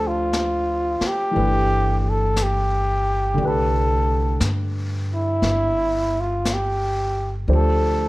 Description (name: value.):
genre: jazz ballad.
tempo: 59 BPM.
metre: 4/4.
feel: swing 66% on 8ths.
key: C major.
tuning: A4 = 438 Hz.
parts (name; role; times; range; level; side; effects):
breathy trumpet; melody; 0.0-8.1 s; E4 to A4; -22 LUFS; equal; none.
dark upright piano; accompaniment; 0.0-8.1 s; D3 to C5; -27 LUFS; equal; none.
upright bass; bass; 0.0-8.1 s; G1 to G2; -22 LUFS; equal; none.
jazz brush drum kit; drums; 0.3-8.1 s; brushed snare drum, hi-hat, snare drum; -30 LUFS; left 2 dB; none.
room: light reverb.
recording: none.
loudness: -19 LUFS.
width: side -19 dB against mid.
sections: 0.0-8.1 A section.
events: none.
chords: 0.0 Dm7; 1.3 Gadd9; 3.4 C69; 7.5 Dm7.